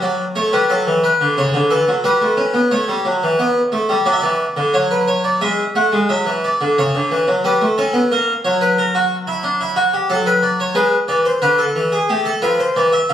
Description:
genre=classical, baroque-style two-part invention for harpsichord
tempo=90 BPM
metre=4/4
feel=straight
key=unclear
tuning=A4 = 435 Hz
part: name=harpsichord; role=solo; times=0.0-13.1 s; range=C#3 to F#5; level=-14 LUFS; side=equal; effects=none
room=wet recital hall reverb, RT60 1.5 s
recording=recorded on a phone in the room, studio ambience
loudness=-14 LUFS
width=side -10 dB against mid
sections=0.0-5.4 A section; 5.4-13.1 B section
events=none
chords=0.0 D/F#; 1.4 A/C#; 2.7 A7; 4.1 D; 5.4 E7/G#; 6.8 A/C#; 8.1 F#; 9.4 Bm/F# (rootless); 10.7 E7; 12.1 Am

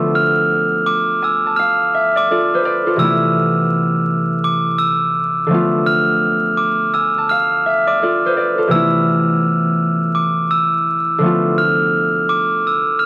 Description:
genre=hip hop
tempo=84 BPM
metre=4/4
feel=swing 61% on 16ths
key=unclear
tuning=A4 = 443 Hz
part: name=concert harp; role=accompaniment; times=0.0-13.1 s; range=C3 to A5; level=-17 LUFS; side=equal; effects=cassette tape, high-pass filter, low-pass filter
part: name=glockenspiel with brass mallets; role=melody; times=0.2-13.1 s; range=D6 to F6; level=-16 LUFS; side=right 1 dB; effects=high-pass filter, low-pass filter
room=light reverb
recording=dry, gritty hardware recording, vinyl crackle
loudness=-13 LUFS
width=side -21 dB against mid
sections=0.0-13.1 A section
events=none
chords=0.0 Bm7b5; 3.0 Amadd9; 5.5 Bm7b5; 8.7 Amadd9; 11.2 Bm7b5

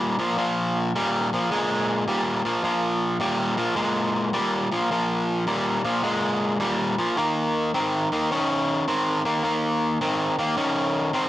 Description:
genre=blues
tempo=106 BPM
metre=4/4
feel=swing 66% on 8ths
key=Bb minor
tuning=A4 = 440 Hz
part: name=overdriven semi-hollow guitar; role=solo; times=0.0-11.3 s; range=Bb2 to Db4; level=-21 LUFS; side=equal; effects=slapback echo
room=moderate spring reverb, RT60 2.5 s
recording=none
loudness=-21 LUFS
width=side -14 dB against mid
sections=0.0-11.3 A section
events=none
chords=0.0 Bb5; 7.2 Eb5

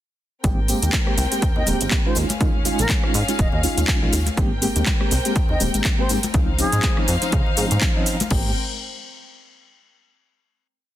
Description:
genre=filtered disco house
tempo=122 BPM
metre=4/4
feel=swing 57% on 16ths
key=Ab major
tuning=A4 = 440 Hz
part: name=mellow reed electric piano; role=accompaniment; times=0.4-8.5 s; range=F3 to G4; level=-26 LUFS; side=equal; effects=fast tremolo, phaser, sidechain pumping
part: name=dark studio violin section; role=sustained chords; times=0.4-8.5 s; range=C4 to G5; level=-28 LUFS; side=left 2 dB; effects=sidechain pumping
part: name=plucky analog bass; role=bass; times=0.4-8.5 s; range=Eb1 to Db3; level=-23 LUFS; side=equal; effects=sidechain pumping
part: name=electronic kick drum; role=drums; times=0.4-8.4 s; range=none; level=-22 LUFS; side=equal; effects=overdrive
part: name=house drum kit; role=drums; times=0.4-8.4 s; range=cabasa, crash cymbal, handclaps, hi-hat, rim click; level=-25 LUFS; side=equal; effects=overdrive, sidechain pumping on hats, sidechain pumping on perc, sidechain pumping on cymbals
part: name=tambourine and congas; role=percussion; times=0.4-8.3 s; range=none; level=-32 LUFS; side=left 5 dB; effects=sidechain pumping on perc
part: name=concert flute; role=melody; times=1.6-7.0 s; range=Ab4 to Eb5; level=-29 LUFS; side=equal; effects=sidechain pumping, tape echo
room=little or no reverb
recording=dense, heavily limited modern master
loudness=-18 LUFS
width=side -13 dB against mid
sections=0.4-8.3 drop; 8.3-10.3 final chord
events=drop 0.4-8.3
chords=0.4 Abmaj9; 2.2 Eb9sus4; 4.4 Abmaj9; 6.3 Dbmaj9; 8.3 Abmaj9

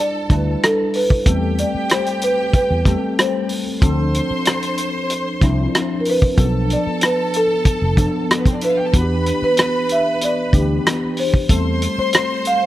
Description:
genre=lush 1970s-style soul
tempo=94 BPM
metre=4/4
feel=straight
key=A minor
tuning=A4 = 445 Hz
part: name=marimba with soft mallets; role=melody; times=0.0-12.7 s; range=A4 to F5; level=-20 LUFS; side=equal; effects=none
part: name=rich studio string section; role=second line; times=0.0-12.7 s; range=B3 to C6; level=-25 LUFS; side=equal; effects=none
part: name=tine electric piano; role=accompaniment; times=0.0-12.7 s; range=E3 to B4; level=-22 LUFS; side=left 1 dB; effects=ensemble chorus
part: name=vintage muted fingered electric bass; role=bass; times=0.3-12.0 s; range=F1 to E2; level=-20 LUFS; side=equal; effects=none
part: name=warm soul drum kit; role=drums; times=0.3-12.6 s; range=hi-hat, kick drum, rim click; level=-17 LUFS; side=equal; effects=none
room=light reverb, small room ambience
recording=none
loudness=-15 LUFS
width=side -14 dB against mid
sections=0.0-12.7 A section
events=none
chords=0.0 Em7; 1.3 Am9/E; 3.8 Dm7; 6.4 Bm7b5; 8.9 Em7; 11.5 Am7/E

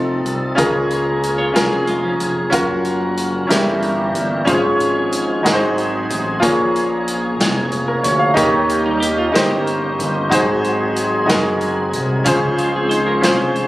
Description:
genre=slow gospel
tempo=62 BPM (dotted quarters)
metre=6/8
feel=straight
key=Db major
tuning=A4 = 443 Hz
part: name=clear grand piano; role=accompaniment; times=0.0-13.7 s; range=G2 to F5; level=-17 LUFS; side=equal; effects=none
part: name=tonewheel organ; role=sustained chords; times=0.0-13.7 s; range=Eb3 to C5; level=-24 LUFS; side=right 2 dB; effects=slow rotary speaker, overdrive, chorus vibrato
part: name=fat analog bass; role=bass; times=0.0-13.7 s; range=F1 to Eb2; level=-24 LUFS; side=equal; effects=none
part: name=swinging big-band drum kit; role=drums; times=0.3-13.7 s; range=hi-hat, kick drum, snare drum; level=-22 LUFS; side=equal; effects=none
part: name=clean electric guitar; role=second line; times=1.4-2.5, 8.9-13.7 s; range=F3 to Db5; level=-24 LUFS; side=right 4 dB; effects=tremolo
room=light reverb, studio reverb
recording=recorded on a phone in the room, club reverb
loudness=-15 LUFS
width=side -17 dB against mid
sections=0.0-13.7 A section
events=none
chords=0.0 F7; 0.6 Bbm7/Db; 2.5 Gbmaj7; 3.5 Gdim7; 4.5 Db/Ab; 5.4 Ab7; 6.4 Bbm7; 8.4 Eb7; 10.3 Ab7; 12.3 Dbmaj7

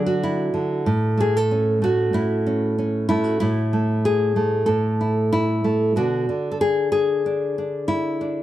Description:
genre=folk, solo fingerstyle acoustic guitar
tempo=94 BPM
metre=4/4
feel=straight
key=B dorian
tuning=A4 = 439 Hz
part: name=nylon-string guitar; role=solo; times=0.0-8.4 s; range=A2 to A4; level=-19 LUFS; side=equal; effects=none
room=studio reverb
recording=dry, close 1970s-style studio recording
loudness=-19 LUFS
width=side -13 dB against mid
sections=0.0-6.0 A section; 6.0-8.4 B section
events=none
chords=0.0 Bm (rootless); 0.9 A; 6.0 Bm

